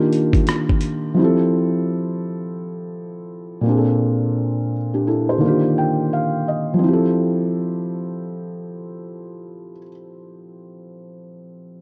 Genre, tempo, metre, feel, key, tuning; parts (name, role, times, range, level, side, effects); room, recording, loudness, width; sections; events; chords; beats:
lo-fi hip hop; 85 BPM; 4/4; swing 62% on 16ths; F major; A4 = 440 Hz
felt-muted upright piano; accompaniment; 0.0-11.8 s; Bb2 to G5; -22 LUFS; equal; low-pass filter
dusty soul sampler-style drum kit; drums; 0.1-1.0 s; hi-hat, kick drum, rim click; -20 LUFS; equal; vintage 12-bit sampler grit
light reverb; rough home demo mix; -20 LUFS; mono
0.0-6.8 A section; 6.8-9.6 B section
felt piano fill 5.4-6.8
0.0 Ebmaj9; 1.2 Fmaj9; 3.6 Bbmaj9; 5.4 Ebmaj9; 6.8 Fmaj9
0.47 | 1.17 1.88 2.58 3.29 | 4.00 4.70 5.41 6.11 | 6.82 7.53 8.23 8.94